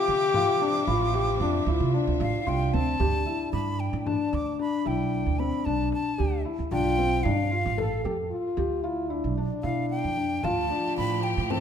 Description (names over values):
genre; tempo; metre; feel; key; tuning
contemporary instrumental, chamber music in an uneven meter; 113 BPM; 7/4; straight; unclear; A4 = 441 Hz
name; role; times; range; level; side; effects
breathy bright jazz flute; melody; 0.0-11.6 s; F5 to D6; -31 LUFS; equal; none
warm French horn; second line; 0.0-11.6 s; D4 to A4; -30 LUFS; left 4 dB; none
bright studio string section; sustained chords; 0.0-3.0, 10.4-11.6 s; C3 to E5; -36 LUFS; equal; none
felt-muted upright piano; arpeggios; 0.0-11.6 s; C4 to A4; -30 LUFS; left 4 dB; none
upright bass; bass; 0.1-11.6 s; A1 to D3; -29 LUFS; right 4 dB; none
frame drum; percussion; 0.3-11.6 s; none; -37 LUFS; left 2 dB; none
celesta; texture; 0.9-4.6 s; B5 to D6; -39 LUFS; left 7 dB; none
room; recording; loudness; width
moderate scoring stage reverb, RT60 1.8 s; none; -24 LUFS; side -8 dB against mid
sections
0.0-3.0 A section; 3.0-11.6 B section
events
none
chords
0.0 Dm9; 3.0 Em7/D; 6.7 Bm7b5; 10.4 Fadd9/D